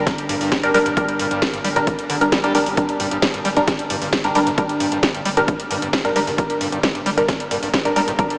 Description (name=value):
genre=driving peak-time techno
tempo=133 BPM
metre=4/4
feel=straight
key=G minor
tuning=A4 = 440 Hz
part: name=filtered dub chord stab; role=stabs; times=0.0-8.4 s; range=G3 to Bb4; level=-23 LUFS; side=equal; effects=phaser, sidechain pumping, analog delay
part: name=saturated sub bass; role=bass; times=0.0-8.4 s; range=G1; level=-41 LUFS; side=equal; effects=none
part: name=metallic inharmonic drone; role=drone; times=0.0-8.4 s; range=G2 to D3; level=-31 LUFS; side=equal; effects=chorus, built-in reverb, phaser, sidechain pumping
part: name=electronic kick drum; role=drums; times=0.1-8.3 s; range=none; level=-26 LUFS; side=equal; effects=none
part: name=techno drum kit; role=drums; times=0.1-8.4 s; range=hi-hat, snare drum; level=-26 LUFS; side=equal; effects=sidechain pumping on hats, sidechain pumping on cymbals
part: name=overdriven acid bass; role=riff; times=0.3-8.1 s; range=G2 to G3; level=-28 LUFS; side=equal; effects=distortion, lush chorus, sidechain pumping, analog delay
room=wet huge ambient reverb, RT60 7.5 s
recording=dreamy mix soaked in reverb, small speaker sound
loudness=-19 LUFS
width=mono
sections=0.0-8.4 A section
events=none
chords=0.0 Gm